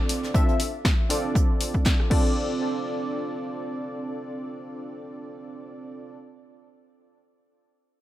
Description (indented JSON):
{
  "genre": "deep house",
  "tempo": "119 BPM",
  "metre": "4/4",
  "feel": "swing 55% on 16ths",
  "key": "D minor",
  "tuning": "A4 = 440 Hz",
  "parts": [
    { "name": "warm analog keys", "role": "stabs", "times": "0.0-6.2 s", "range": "C4 to E5", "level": "-29 LUFS", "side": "right 1 dB", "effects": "chorus, sidechain pumping, low-pass filter, tape echo" },
    { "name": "punchy analog drum machine", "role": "drums", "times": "0.1-2.2 s", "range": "crash cymbal, hi-hat, rim click, snare drum", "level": "-30 LUFS", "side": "left 1 dB", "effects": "none" },
    { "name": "soft brush drum kit", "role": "drums", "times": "0.1-2.0 s", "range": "hi-hat, snare drum", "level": "-37 LUFS", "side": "right 3 dB", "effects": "sidechain pumping on hats, high-pass filter on hats, high-pass filter on snare, high-pass filter on room" },
    { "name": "electronic kick drum", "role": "drums", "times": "0.3-2.2 s", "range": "none", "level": "-22 LUFS", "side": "equal", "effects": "overdrive" }
  ],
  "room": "small room ambience",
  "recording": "none",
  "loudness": "-23 LUFS",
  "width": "side -14 dB against mid",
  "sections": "0.0-2.4 A section; 2.4-6.4 B section",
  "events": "none",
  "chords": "0.0 Dm7"
}